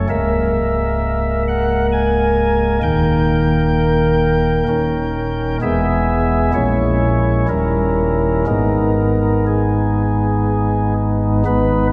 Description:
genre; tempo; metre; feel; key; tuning
classical, chorale-style piece for pipe organ; 59-66 BPM; 3/4; rubato; G# minor; A4 = 440 Hz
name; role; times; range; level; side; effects
pipe organ, flutes; solo; 0.0-11.9 s; C#1 to G#5; -17 LUFS; equal; none
room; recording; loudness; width
wet church reverb, RT60 2.5 s; none; -17 LUFS; mono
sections
0.0-11.5 A section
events
none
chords
0.1 A#m7b5/C#; 2.8 D#; 4.7 D#7; 5.6 E; 6.5 A#m7b5; 7.5 D#7b9; 8.5 G#m

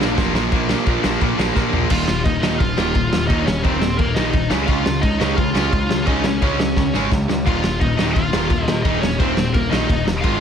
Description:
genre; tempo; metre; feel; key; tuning
punk rock; 173 BPM; 4/4; straight; unclear; A4 = 440 Hz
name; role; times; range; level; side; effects
high-gain lead guitar; melody; 0.0-10.4 s; Bb3 to F5; -23 LUFS; equal; distortion, tape echo
cranked stack guitar; riff; 0.0-10.4 s; Eb2 to Db4; -23 LUFS; left 13 dB; overdrive
overdriven semi-hollow guitar; riff; 0.0-10.4 s; Eb2 to Db4; -24 LUFS; right 15 dB; none
growling picked electric bass; bass; 0.0-10.4 s; Eb1 to Db2; -25 LUFS; equal; overdrive
raw garage drum kit; drums; 0.0-10.3 s; crash cymbal, kick drum, snare drum, toms; -20 LUFS; equal; none
room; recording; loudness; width
light reverb; none; -16 LUFS; side -8 dB against mid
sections
0.5-1.9 A section; 1.9-10.4 B section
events
drum fill 0.0-0.5, 1.6-1.9, 6.8-7.5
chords
0.0 Bb; 0.5 Bb5; 1.9 Eb5; 4.5 Db; 7.5 Eb5

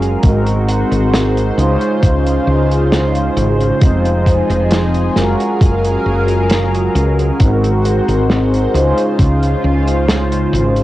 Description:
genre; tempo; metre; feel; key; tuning
vaporwave; 67 BPM; 4/4; straight; Db major; A4 = 439 Hz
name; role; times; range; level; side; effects
mellow synth brass; accompaniment; 0.0-10.8 s; Ab3 to C5; -16 LUFS; equal; analog chorus, analog delay, plate reverb
lush unison pad; sustained chords; 0.0-10.8 s; Db3 to F5; -20 LUFS; equal; chorus, phaser, plate reverb
woody fretless electric bass; bass; 0.0-10.8 s; F1 to Db2; -16 LUFS; equal; none
warm soul drum kit; drums; 0.0-10.8 s; hi-hat, snare drum; -20 LUFS; equal; vintage 12-bit sampler grit, cassette tape
electronic kick drum; drums; 0.2-9.4 s; none; -11 LUFS; equal; vintage 12-bit sampler grit, cassette tape
room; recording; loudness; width
light reverb; home recording on cassette; -11 LUFS; side -15 dB against mid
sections
0.0-10.8 A section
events
none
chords
0.2 Ab7; 1.6 Dbmaj7; 3.8 Fm7; 5.2 Gbmaj9; 7.4 Ab7; 8.7 Dbmaj7

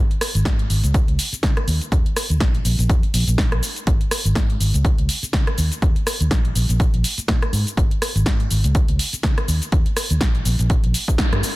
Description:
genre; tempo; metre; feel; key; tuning
filtered disco house; 123 BPM; 4/4; swing 56% on 16ths; unclear; A4 = 440 Hz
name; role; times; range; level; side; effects
vintage muted fingered electric bass; bass; 0.0-11.5 s; Ab1 to Db3; -20 LUFS; equal; tube saturation, sidechain pumping, low-pass filter
punchy analog drum machine; drums; 0.1-11.5 s; hi-hat, rim click, shaker, snare drum; -24 LUFS; equal; sidechain pumping on hats, sidechain pumping on perc, sidechain pumping on cymbals
electronic kick drum; drums; 0.5-11.3 s; none; -19 LUFS; equal; none
room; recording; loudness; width
little or no reverb; dense, heavily limited modern master; -17 LUFS; side -19 dB against mid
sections
0.0-11.6 A section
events
band accent 11.2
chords
none

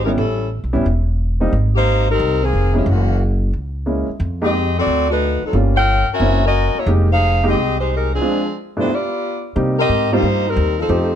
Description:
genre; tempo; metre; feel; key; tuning
jazz, big band swing; 179 BPM; 4/4; swing 64% on 8ths; unclear; A4 = 438 Hz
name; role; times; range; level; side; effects
mellow saxophone section; melody; 0.0-11.2 s; Eb3 to G5; -18 LUFS; left 1 dB; none
upright bass; bass; 0.0-11.2 s; E1 to C3; -18 LUFS; equal; none
warm baby grand piano; accompaniment; 0.1-11.1 s; G2 to G4; -21 LUFS; right 1 dB; none
room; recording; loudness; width
little or no reverb; none; -15 LUFS; side -9 dB against mid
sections
0.0-9.6 A section; 9.6-11.2 B section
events
break 8.2-9.6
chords
0.2 A9; 1.5 Abmaj9; 2.9 Gb9; 4.2 Fm11; 4.9 D7b9; 5.5 Gm7b5; 6.2 Gb7#11; 6.9 Fm11; 8.2 Dm7b5; 8.9 G7; 9.6 Cm7

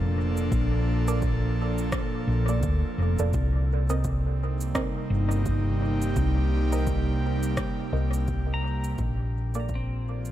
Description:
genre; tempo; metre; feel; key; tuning
ambient dub; 85 BPM; 4/4; swing 59% on 16ths; C dorian; A4 = 440 Hz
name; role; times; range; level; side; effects
airy breathy pad; sustained chords; 0.0-10.3 s; Bb2 to A4; -30 LUFS; right 1 dB; chorus
hollow-body short-scale fingered electric bass; bass; 0.0-10.3 s; F1 to D2; -25 LUFS; equal; none
electronic shaker and rim click; drums; 0.4-10.3 s; none; -38 LUFS; equal; overdrive, dub echo
electronic kick drum; drums; 0.5-9.9 s; none; -32 LUFS; equal; overdrive
filtered dub chord stab; stabs; 1.1-9.8 s; Bb3 to Eb5; -36 LUFS; right 3 dB; chorus, dub echo
pedal steel guitar; arpeggios; 8.5-10.3 s; C4 to Bb5; -38 LUFS; left 4 dB; analog delay
room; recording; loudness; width
light reverb, digital ambience; echo-heavy mix; -24 LUFS; side -12 dB against mid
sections
0.0-10.3 A section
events
fade-out 7.1-10.3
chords
0.0 Bbmaj7; 3.3 Cm7; 9.0 Bbmaj7

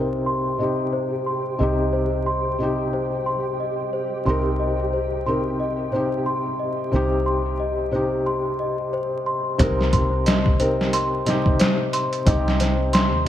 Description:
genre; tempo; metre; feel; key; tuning
trip hop; 90 BPM; 4/4; swing 58% on 16ths; C minor; A4 = 440 Hz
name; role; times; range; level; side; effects
felt-muted upright piano; accompaniment; 0.0-13.3 s; C3 to Bb4; -25 LUFS; equal; tremolo, low-pass filter, tape echo
celesta; arpeggios; 0.0-13.3 s; C5 to C6; -25 LUFS; left 2 dB; low-pass filter, tape echo
deep dub fingered electric bass; bass; 0.0-13.3 s; C2 to Eb2; -26 LUFS; equal; none
flickering grainy texture; texture; 0.1-9.6 s; G4; -33 LUFS; right 1 dB; built-in reverb
trip hop sampler-style drum kit; drums; 9.6-13.1 s; hi-hat, kick drum, snare drum; -21 LUFS; equal; overdrive
room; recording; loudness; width
moderate lush hall reverb, RT60 1.8 s, small room reverb; bright 1980s-style digital production, vinyl crackle; -20 LUFS; side -11 dB against mid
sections
0.0-9.6 A section; 9.6-13.3 B section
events
none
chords
0.0 Cm7

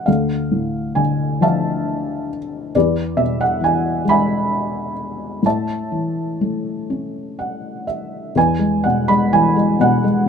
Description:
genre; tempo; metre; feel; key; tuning
classical, lyrical solo piano; 40-46 BPM (dotted quarters); 6/8; rubato; unclear; A4 = 438 Hz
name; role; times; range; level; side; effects
felt-muted upright piano; solo; 0.0-10.3 s; D2 to B5; -16 LUFS; equal; none
room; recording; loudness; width
moderate small room reverb, RT60 0.5 s; minimal, uncompressed stereo recording; -16 LUFS; side -6 dB against mid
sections
0.0-8.4 A section; 8.4-10.3 B section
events
felt piano fill 6.9-8.4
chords
0.1 Dmadd9; 2.8 E; 5.4 A; 8.4 E

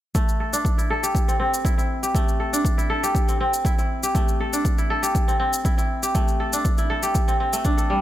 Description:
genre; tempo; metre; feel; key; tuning
afro house; 120 BPM; 4/4; straight; A minor; A4 = 439 Hz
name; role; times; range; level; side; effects
kora; arpeggios; 0.1-8.0 s; G3 to A4; -23 LUFS; equal; vintage 12-bit sampler grit, sidechain pumping, low-pass filter, digital delay
electronic kick drum; drums; 0.1-7.8 s; none; -22 LUFS; equal; none
cabasa; drums; 0.2-7.9 s; none; -30 LUFS; left 2 dB; none
room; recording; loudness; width
small room ambience; none; -19 LUFS; side -13 dB against mid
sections
0.2-8.0 A section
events
none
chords
0.2 Am7

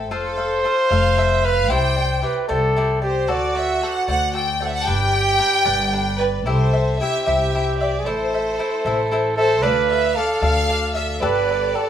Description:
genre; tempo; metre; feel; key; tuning
mexican folk, mariachi; 76 BPM (dotted quarters); 6/8; straight; C major; A4 = 439 Hz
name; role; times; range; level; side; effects
rich studio violin section; melody; 0.0-11.9 s; A4 to A5; -22 LUFS; equal; none
cavaquinho; accompaniment; 0.0-11.9 s; D4 to F5; -26 LUFS; left 5 dB; none
upright bass; bass; 0.0-11.7 s; F1 to D2; -23 LUFS; equal; none
warm trumpet; second line; 0.1-11.9 s; F#4 to C5; -21 LUFS; right 2 dB; none
clear chamber violin section; sustained chords; 6.4-11.9 s; A3 to F5; -29 LUFS; left 2 dB; none
room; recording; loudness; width
light reverb; rough home demo mix, small room ambience; -17 LUFS; side -9 dB against mid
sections
0.0-11.9 A section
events
none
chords
0.1 F; 1.7 Cadd9; 3.3 D7; 4.9 G; 6.5 C; 8.1 Am; 9.6 Dm; 11.2 Gadd9

